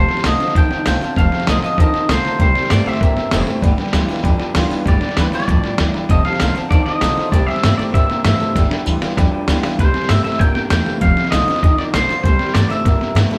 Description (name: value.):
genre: rockabilly.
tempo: 195 BPM.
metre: 4/4.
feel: straight.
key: C major.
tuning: A4 = 440 Hz.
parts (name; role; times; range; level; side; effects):
electric guitar through a small old amp; melody; 0.0-13.3 s; B4 to G5; -23 LUFS; equal; spring reverb.
bright upright piano; accompaniment; 0.0-9.7 s; B4 to A5; -31 LUFS; equal; none.
picked steel-string acoustic guitar; accompaniment; 0.0-13.4 s; F2 to F4; -28 LUFS; equal; none.
electric guitar through a small old amp; riff; 0.0-13.4 s; F2 to Bb3; -25 LUFS; equal; none.
upright bass; bass; 0.0-13.3 s; F1 to Bb2; -22 LUFS; equal; none.
lo-fi sampler-style drum kit; drums; 0.1-13.4 s; hi-hat, kick drum, snare drum; -20 LUFS; equal; none.
room: moderate stone room reverb, RT60 1.2 s.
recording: band playing live in one room.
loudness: -16 LUFS.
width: mono.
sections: 0.0-9.8 A section; 9.8-13.4 A section.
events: drum fill 8.6-9.8.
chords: 0.0 F7; 2.4 C7; 3.6 G7; 6.1 F7; 7.3 C7; 8.6 G7; 9.8 C7; 11.0 F7; 12.2 C7.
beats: 0.24 0.55 0.86 | 1.17 1.48 1.78 2.09 | 2.40 2.71 3.02 3.33 | 3.63 3.94 4.25 4.56 | 4.87 5.17 5.48 5.79 | 6.10 6.40 6.71 7.02 | 7.33 7.63 7.94 8.25 | 8.56 8.87 9.17 9.48 | 9.79 10.10 10.40 10.71 | 11.02 11.32 11.63 11.94 | 12.25 12.55 12.86 13.17.